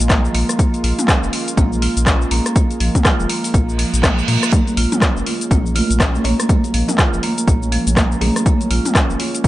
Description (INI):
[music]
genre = afro house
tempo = 122 BPM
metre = 4/4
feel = swing 60% on 16ths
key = Bb minor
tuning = A4 = 440 Hz
[part]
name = kalimba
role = melody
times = 0.0-0.1, 6.2-8.6 s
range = Ab4 to Db5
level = -34 LUFS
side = right 1 dB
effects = tape echo
[part]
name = warm analog pad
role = sustained chords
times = 0.0-9.5 s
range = Ab3 to F4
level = -28 LUFS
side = left 1 dB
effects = chorus, sidechain pumping
[part]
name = warm sub bass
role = bass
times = 0.0-9.5 s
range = F1 to Bb2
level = -19 LUFS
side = equal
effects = sidechain pumping
[part]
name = deep house drum kit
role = drums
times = 0.0-9.5 s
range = handclaps, hi-hat, rim click, shaker, toms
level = -20 LUFS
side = left 1 dB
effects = none
[part]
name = marimba with medium hard mallets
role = arpeggios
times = 0.1-9.5 s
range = F3 to F4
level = -22 LUFS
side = right 1 dB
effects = sidechain pumping, tape echo
[part]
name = electronic kick drum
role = drums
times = 0.1-9.5 s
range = none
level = -15 LUFS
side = equal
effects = none
[part]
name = reverse cymbal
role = sound effects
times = 3.8-4.5 s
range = none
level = -25 LUFS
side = right 7 dB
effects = none
[part]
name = congas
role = percussion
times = 4.5-9.5 s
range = none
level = -24 LUFS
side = right 2 dB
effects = none
[sound]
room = little or no reverb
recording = nothing above 10.3 kHz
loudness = -14 LUFS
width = side -16 dB against mid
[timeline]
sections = 0.0-9.5 A section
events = reverse cymbal 3.8-4.5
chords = 0.0 Bbm7